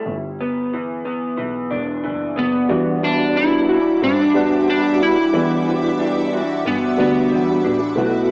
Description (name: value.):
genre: indie pop, bedroom pop.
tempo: 91 BPM.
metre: 4/4.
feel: swing 55% on 16ths.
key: E minor.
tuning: A4 = 441 Hz.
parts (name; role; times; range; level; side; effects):
electric guitar through a small old amp; accompaniment; 0.0-8.3 s; B2 to F#4; -21 LUFS; equal; analog chorus, warbly pitch drift, cassette tape.
warm double bass; bass; 0.1-8.3 s; E1 to G2; -27 LUFS; equal; none.
electric slide guitar; melody; 2.4-7.6 s; B3 to E4; -19 LUFS; equal; analog chorus, cassette tape, analog delay.
percussive tonewheel organ; accompaniment; 2.7-8.3 s; G3 to F#4; -19 LUFS; equal; chorus vibrato, slow rotary speaker, cassette tape.
shimmering ambient pad; sustained chords; 3.6-8.3 s; G3 to D6; -28 LUFS; equal; chorus, built-in reverb, cassette tape.
room: moderate spring reverb, RT60 1.4 s, digital ambience.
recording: home recording on cassette, small speaker sound.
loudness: -16 LUFS.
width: side -31 dB against mid.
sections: 0.0-2.7 A section; 2.7-8.3 B section.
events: none.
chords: 0.1 G6; 2.7 Em9.